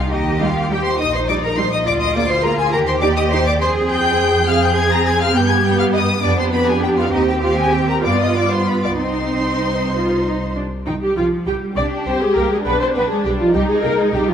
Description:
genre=quick classical-period movement for string orchestra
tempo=68 BPM (dotted quarters)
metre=6/8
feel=rubato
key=C minor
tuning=A4 = 439 Hz
part: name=rich symphonic violin section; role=melody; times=0.0-14.2 s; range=Eb5 to Bb6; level=-23 LUFS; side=left 4 dB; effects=none
part: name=warm symphonic violin section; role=second line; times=0.0-14.3 s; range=D4 to Bb5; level=-21 LUFS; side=left 3 dB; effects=none
part: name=rich symphonic cello section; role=bass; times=0.0-14.3 s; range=Eb3 to Ab4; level=-23 LUFS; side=right 2 dB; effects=none
part: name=rich symphonic double bass section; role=bass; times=0.1-14.2 s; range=Bb1 to G2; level=-22 LUFS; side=right 2 dB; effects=none
part: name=rich symphonic viola section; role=accompaniment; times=0.4-14.3 s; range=G3 to D5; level=-20 LUFS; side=right 1 dB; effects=none
room=moderate scoring stage reverb, RT60 1.6 s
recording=none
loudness=-15 LUFS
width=side -8 dB against mid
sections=0.0-10.9 A section; 10.9-14.3 A section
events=none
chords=0.1 Eb; 1.9 Bb7/D; 2.7 Eb; 3.6 Fm; 5.4 G; 6.2 G7/F; 7.1 Cm/Eb; 8.1 G7; 9.0 Cm; 10.9 C5; 12.7 G7; 13.5 Cm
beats=| 0.12 1.00 | 1.86 2.73 | 3.61 4.49 | 5.36 6.24 | 7.13 8.05 | 8.99 9.94 | 10.87 11.77 | 12.66 13.55

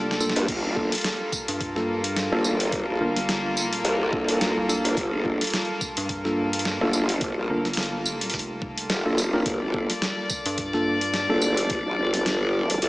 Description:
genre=glitch hop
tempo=107 BPM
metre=4/4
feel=swing 56% on 16ths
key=G minor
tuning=A4 = 439 Hz
part: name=rich chamber string section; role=sustained chords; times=0.0-12.9 s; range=G3 to D5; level=-28 LUFS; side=left 1 dB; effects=sidechain pumping
part: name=tine electric piano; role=stabs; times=0.0-11.5 s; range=Bb3 to Bb4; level=-28 LUFS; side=equal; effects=sidechain pumping, diffuse ambient delay
part: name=rubbery square bass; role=bass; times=0.0-11.3 s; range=F1 to G2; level=-32 LUFS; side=equal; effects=none
part: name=boom bap sampler-style drum kit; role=drums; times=0.1-12.9 s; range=crash cymbal, hi-hat, snare drum, tambourine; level=-28 LUFS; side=equal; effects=studio reverb
part: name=growl bass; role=bass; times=0.4-12.9 s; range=F1 to G2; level=-25 LUFS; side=equal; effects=chorus, overdrive
part: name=electronic kick drum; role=drums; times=0.5-11.8 s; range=none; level=-36 LUFS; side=equal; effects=studio reverb
room=moderate huge ambient reverb, RT60 4.2 s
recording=dreamy mix soaked in reverb, small speaker sound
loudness=-22 LUFS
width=side -20 dB against mid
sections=0.0-12.9 A section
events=drum fill 0.0-0.5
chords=0.0 Gm9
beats=| 0.49 1.05 1.61 2.17 | 2.73 3.29 3.85 4.41 | 4.97 5.53 6.09 6.66 | 7.22 7.78 8.34 8.90 | 9.46 10.02 10.58 11.14 | 11.70 12.26 12.82

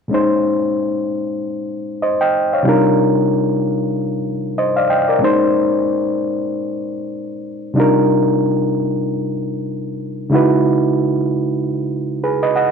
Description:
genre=R&B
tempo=94 BPM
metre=4/4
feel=swing 58% on 16ths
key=Bb dorian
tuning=A4 = 440 Hz
part: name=overdriven reed electric piano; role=solo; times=0.1-12.7 s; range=Bb2 to G5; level=-15 LUFS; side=equal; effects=none
room=moderate large studio reverb, RT60 1.1 s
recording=band playing live in one room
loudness=-15 LUFS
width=side -6 dB against mid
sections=0.1-5.2 A section; 5.2-12.7 B section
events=none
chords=0.1 Bbm11; 2.7 Cm11; 5.2 Bbm11; 7.8 Cm11; 10.3 Dbm11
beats=| 0.10 0.74 1.38 2.01 | 2.65 3.29 3.93 4.57 | 5.21 5.84 6.48 7.12 | 7.76 8.40 9.04 9.67 | 10.31 10.95 11.59 12.23

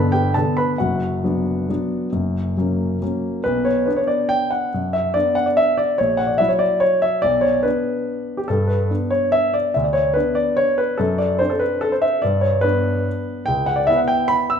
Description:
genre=classical, piano waltz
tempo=130-152 BPM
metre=3/4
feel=rubato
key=B minor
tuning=A4 = 438 Hz
part: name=warm grand piano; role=solo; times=0.0-14.6 s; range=F#1 to E6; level=-17 LUFS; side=equal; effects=none
room=wet recital hall reverb, RT60 1.7 s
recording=minimal, uncompressed stereo recording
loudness=-17 LUFS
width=side -7 dB against mid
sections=0.0-3.5 A section; 3.5-14.6 B section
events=none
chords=0.0 G; 0.8 Bm/F#; 2.1 F#; 3.5 Bm; 6.0 F#7/A#; 7.2 Bm; 8.5 G; 11.0 D7/F#; 12.2 G; 13.5 C#m7b5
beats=0.35 | 0.78 1.23 1.69 | 2.13 2.57 3.02 | 3.46 3.88 4.31 | 4.74 5.15 5.58 | 5.99 6.39 6.82 | 7.24 7.65 8.08 | 8.49 8.90 9.33 | 9.74 10.15 10.57 | 10.99 11.40 11.82 | 12.24 12.64 13.06 | 13.48 13.89 14.31

